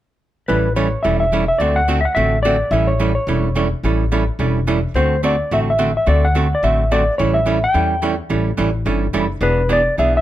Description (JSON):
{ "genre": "country, western swing", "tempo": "215 BPM", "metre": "4/4", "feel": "swing 62% on 8ths", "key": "A mixolydian", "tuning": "A4 = 439 Hz", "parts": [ { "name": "clean lap steel guitar", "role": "melody", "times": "0.5-10.2 s", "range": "B4 to G5", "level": "-18 LUFS", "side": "left 1 dB", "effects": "plate reverb" }, { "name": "archtop guitar, miked and amplified", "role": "accompaniment", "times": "0.5-10.2 s", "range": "D3 to A4", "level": "-20 LUFS", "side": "right 4 dB", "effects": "none" }, { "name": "upright bass", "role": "bass", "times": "0.5-10.2 s", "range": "E1 to E2", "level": "-19 LUFS", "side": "left 1 dB", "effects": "none" } ], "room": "light reverb", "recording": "none", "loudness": "-15 LUFS", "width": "side -13 dB against mid", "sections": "0.5-10.2 A section", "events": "none", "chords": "0.5 A7; 1.6 D7; 2.7 A7; 5.0 D7; 7.2 A7; 9.4 E7" }